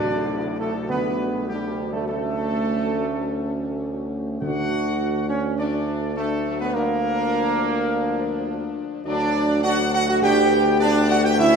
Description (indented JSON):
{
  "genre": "classical",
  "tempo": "103 BPM",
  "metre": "4/4",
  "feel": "straight",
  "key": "D major",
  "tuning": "A4 = 444 Hz",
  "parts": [
    { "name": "warm trumpet section", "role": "melody", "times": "0.0-11.6 s", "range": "G4 to G5", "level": "-30 LUFS", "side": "equal", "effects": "none" },
    { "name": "clear trombone section", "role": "sustained chords", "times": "0.0-11.6 s", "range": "G3 to G4", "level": "-23 LUFS", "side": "right 2 dB", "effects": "none" },
    { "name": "warm French horn section", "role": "sustained chords", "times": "0.0-11.6 s", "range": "F3 to F#4", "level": "-27 LUFS", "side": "left 4 dB", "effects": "none" },
    { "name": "warm tuba", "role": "bass", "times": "0.0-11.6 s", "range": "D2", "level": "-26 LUFS", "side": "right 1 dB", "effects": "none" },
    { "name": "timpani", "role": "percussion", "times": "0.0-5.2, 10.2-11.6 s", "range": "D3", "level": "-37 LUFS", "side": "left 2 dB", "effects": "none" }
  ],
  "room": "wet scoring stage reverb, RT60 1.9 s",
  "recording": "minimal, uncompressed stereo recording",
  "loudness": "-20 LUFS",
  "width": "side -6 dB against mid",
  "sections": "0.0-11.6 A section",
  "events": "none",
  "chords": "0.0 D; 0.9 G/D; 2.1 A/D; 4.4 D; 6.7 Bb/D; 9.1 D; 10.2 G/D"
}